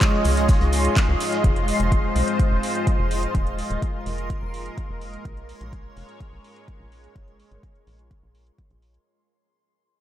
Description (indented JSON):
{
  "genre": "progressive house",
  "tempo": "126 BPM",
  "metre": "4/4",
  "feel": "straight",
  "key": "unclear",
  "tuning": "A4 = 442 Hz",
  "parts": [
    { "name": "lush unison pad", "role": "sustained chords", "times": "0.0-9.0 s", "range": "Ab3 to Eb5", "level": "-25 LUFS", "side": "left 1 dB", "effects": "chorus, phaser, sidechain pumping" },
    { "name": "electronic kick drum", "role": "drums", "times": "0.0-8.7 s", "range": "none", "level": "-21 LUFS", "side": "equal", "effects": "overdrive" },
    { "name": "house drum kit", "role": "drums", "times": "0.0-9.0 s", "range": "handclaps, hi-hat", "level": "-31 LUFS", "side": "right 1 dB", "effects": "sidechain pumping on hats, low-pass filter on hats, low-pass filter on snare, low-pass filter on room" },
    { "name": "jazz brush drum kit", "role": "drums", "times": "0.0-1.4 s", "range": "hi-hat, shaker, snare drum", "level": "-37 LUFS", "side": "equal", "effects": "none" },
    { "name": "backwards swelling texture", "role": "texture", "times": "0.0-9.1 s", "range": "C6", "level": "-33 LUFS", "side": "right 2 dB", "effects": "built-in reverb, lush chorus, sidechain pumping" },
    { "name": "tight sequencer bass", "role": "bass", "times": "0.3-9.0 s", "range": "Eb1 to Db2", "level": "-25 LUFS", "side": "equal", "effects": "tube saturation, sidechain pumping" }
  ],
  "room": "moderate huge ambient reverb, RT60 8.1 s",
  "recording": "dreamy mix soaked in reverb",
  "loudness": "-19 LUFS",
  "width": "side -12 dB against mid",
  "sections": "0.0-9.1 A section",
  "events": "fade-out 0.0-9.1",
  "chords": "0.0 Dbadd9; 1.4 Fm7; 5.3 Bbm7"
}